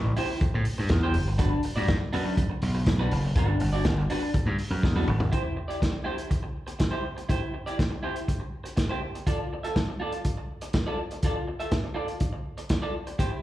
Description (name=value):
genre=disco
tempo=122 BPM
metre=4/4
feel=straight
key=unclear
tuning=A4 = 441 Hz
part: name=electric guitar through a small old amp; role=accompaniment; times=0.0-13.4 s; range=D4 to E5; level=-32 LUFS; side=right 1 dB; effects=wide subtle chorus, slapback echo
part: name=gritty slap bass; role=bass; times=0.0-5.3 s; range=F#1 to A2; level=-26 LUFS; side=equal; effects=overdrive
part: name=vintage drum kit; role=drums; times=0.2-13.3 s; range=hi-hat, kick drum, snare drum, toms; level=-28 LUFS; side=equal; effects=none
room=light reverb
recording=live gig heard through the venue's PA, club reverb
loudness=-25 LUFS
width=side -14 dB against mid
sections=0.0-5.3 A section; 5.3-13.4 B section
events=drum fill 4.8-5.3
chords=0.0 Am7; 1.2 Gmaj7; 5.3 C/E; 9.0 F6